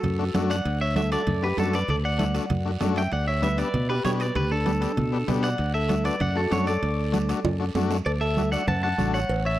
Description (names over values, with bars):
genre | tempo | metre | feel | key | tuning
latin, cumbia | 194 BPM | 4/4 | straight | D major | A4 = 439 Hz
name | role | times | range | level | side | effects
electric guitar at the edge of break-up | melody | 0.0-9.6 s | A4 to A5 | -29 LUFS | equal | spring reverb, slapback echo
bell-like tine electric piano | second line | 0.0-9.6 s | D4 to F#5 | -31 LUFS | right 1 dB | fast stereo tremolo
modern bright fingered electric bass | bass | 0.0-9.6 s | A1 to B2 | -26 LUFS | equal | none
congas | percussion | 0.0-9.1 s | none | -30 LUFS | right 3 dB | none
guiro | percussion | 0.0-9.6 s | none | -43 LUFS | right 7 dB | none
timbales and cowbell | percussion | 0.0-9.4 s | none | -34 LUFS | right 5 dB | none
overdriven combo organ | accompaniment | 0.2-9.2 s | A3 to G4 | -31 LUFS | left 7 dB | none
room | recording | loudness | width
small room ambience | dry, close 1970s-style studio recording | -22 LUFS | side -14 dB against mid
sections
0.0-8.1 A section; 8.1-9.6 B section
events
drum fill 7.4-8.1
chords
0.0 D; 3.1 G/D; 5.6 D